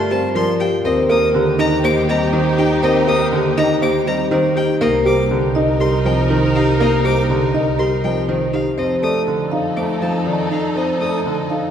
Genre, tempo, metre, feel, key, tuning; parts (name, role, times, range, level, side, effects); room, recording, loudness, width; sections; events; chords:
classical, minimalist pattern music; 121 BPM; 4/4; straight; A4 = 438 Hz
marimba with medium mallets; melody; 0.0-11.7 s; G4 to F5; -20 LUFS; left 4 dB
warm grand piano; accompaniment; 0.0-11.6 s; D3 to C4; -22 LUFS; right 1 dB
rich symphonic string section; sustained chords; 0.0-11.7 s; Eb4 to Bb4; -25 LUFS; equal
dark grand piano; arpeggios; 0.0-11.7 s; C4 to C5; -22 LUFS; right 3 dB
rich violin; arpeggios; 0.0-11.2 s; Eb5 to Eb6; -27 LUFS; left 2 dB
warm double bass; bass; 0.0-11.7 s; C2 to G2; -22 LUFS; right 2 dB
wet church reverb, RT60 2.7 s; recorded in a church or concert hall; -14 LUFS; side -8 dB against mid
0.0-11.7 A section
0.0 Gm9; 0.8 Ebmaj7; 4.8 Cm9; 8.8 F7